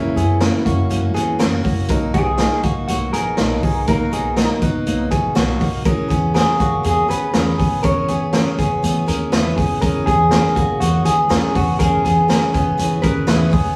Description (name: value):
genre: jangly indie pop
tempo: 121 BPM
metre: 4/4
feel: straight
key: unclear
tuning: A4 = 440 Hz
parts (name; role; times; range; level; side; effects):
- electric guitar through a small old amp; melody; 0.0-13.5 s; E4 to C#5; -24 LUFS; equal; none
- picked steel-string acoustic guitar; accompaniment; 0.0-13.8 s; F#2 to G#4; -26 LUFS; equal; none
- direct-recorded clean electric guitar; arpeggios; 0.0-13.8 s; A#3 to B4; -25 LUFS; equal; none
- upright bass; bass; 0.0-13.7 s; A#1 to F#2; -24 LUFS; equal; none
- raw garage drum kit; drums; 0.2-13.6 s; hi-hat, kick drum, snare drum; -23 LUFS; equal; none
room: wet studio reverb, RT60 0.6 s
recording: band playing live in one room, small room ambience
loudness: -17 LUFS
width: mono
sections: 0.0-13.8 A section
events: none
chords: 0.0 F#7; 1.9 Bmaj7; 5.9 E6